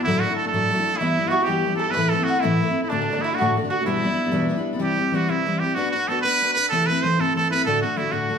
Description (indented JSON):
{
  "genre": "celtic folk, Celtic jig",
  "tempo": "126 BPM (dotted quarters)",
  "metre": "6/8",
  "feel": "straight",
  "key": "E minor",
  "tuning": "A4 = 439 Hz",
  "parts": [
    { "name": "trumpet with straight mute", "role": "melody", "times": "0.0-8.4 s", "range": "D4 to C5", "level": "-23 LUFS", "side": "right 3 dB", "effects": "none" },
    { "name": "picked steel-string acoustic guitar", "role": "accompaniment", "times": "0.0-8.4 s", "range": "D2 to B4", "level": "-23 LUFS", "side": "left 2 dB", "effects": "none" },
    { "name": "mandolin", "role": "second line", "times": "1.0-4.6 s", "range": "D4 to B4", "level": "-25 LUFS", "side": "right 1 dB", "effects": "none" }
  ],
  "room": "wet studio reverb, RT60 0.8 s",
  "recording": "band playing live in one room",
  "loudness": "-19 LUFS",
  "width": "side -7 dB against mid",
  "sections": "0.0-4.8 A section; 4.8-8.4 B section",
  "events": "none",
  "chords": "0.1 Dadd9; 1.0 Em; 2.0 Am; 2.9 D; 3.9 Em7; 4.8 C; 5.8 Bm; 6.7 Am/C; 7.7 D"
}